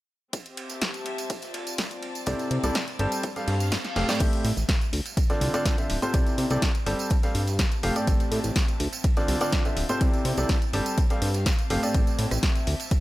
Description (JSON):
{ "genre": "piano house", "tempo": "124 BPM", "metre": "4/4", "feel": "straight", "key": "A minor", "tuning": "A4 = 439 Hz", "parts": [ { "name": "dusty soul sampler-style drum kit", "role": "drums", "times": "0.3-13.0 s", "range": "hi-hat, ride cymbal, snare drum", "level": "-40 LUFS", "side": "right 3 dB", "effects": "overdrive, sidechain pumping on cymbals, high-pass filter on cymbals, high-pass filter on snare, sidechain pumping on hats, high-pass filter on hats" }, { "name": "electronic kick drum", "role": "drums", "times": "0.3-13.0 s", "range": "none", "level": "-25 LUFS", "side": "equal", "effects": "high-pass filter on kick, high-pass filter on room" }, { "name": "punchy analog drum machine", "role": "drums", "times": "0.3-13.0 s", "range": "crash cymbal, hi-hat, rim click, snare drum", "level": "-31 LUFS", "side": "left 1 dB", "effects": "none" }, { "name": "tambourine", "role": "percussion", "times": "0.3-13.0 s", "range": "none", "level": "-38 LUFS", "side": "right 6 dB", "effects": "none" }, { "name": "warm studio string section", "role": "texture", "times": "0.3-13.0 s", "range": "C4 to A5", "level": "-39 LUFS", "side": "left 2 dB", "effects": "sidechain pumping" }, { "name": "clear baby grand piano", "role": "riff", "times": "2.3-12.7 s", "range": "A2 to A5", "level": "-28 LUFS", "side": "equal", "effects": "sidechain pumping, tape echo" }, { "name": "fat analog bass", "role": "bass", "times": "2.3-12.8 s", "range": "D1 to C3", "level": "-26 LUFS", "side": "equal", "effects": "sidechain pumping" }, { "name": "reverse cymbal", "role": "sound effects", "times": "3.4-4.2 s", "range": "none", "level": "-37 LUFS", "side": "right 4 dB", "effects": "none" } ], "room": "little or no reverb", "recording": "none", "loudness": "-23 LUFS", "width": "side -17 dB against mid", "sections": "0.3-4.2 A section; 4.2-13.0 B section", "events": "reverse cymbal 3.4-4.2; drum fill 3.8-4.2", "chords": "0.3 Am7; 1.1 Dm7; 2.3 C69; 3.0 G9sus4; 4.2 Am7; 4.9 Dm7; 6.1 C69; 6.9 G9sus4; 8.1 Am7; 8.8 Dm7; 10.0 C69; 10.7 G9sus4; 11.9 Am7", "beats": "| 0.33 0.82 1.30 1.78 | 2.27 2.75 3.23 3.72 | 4.20 4.69 5.17 5.66 | 6.14 6.62 7.11 7.59 | 8.07 8.56 9.04 9.53 | 10.01 10.49 10.98 11.46 | 11.95 12.43 12.91" }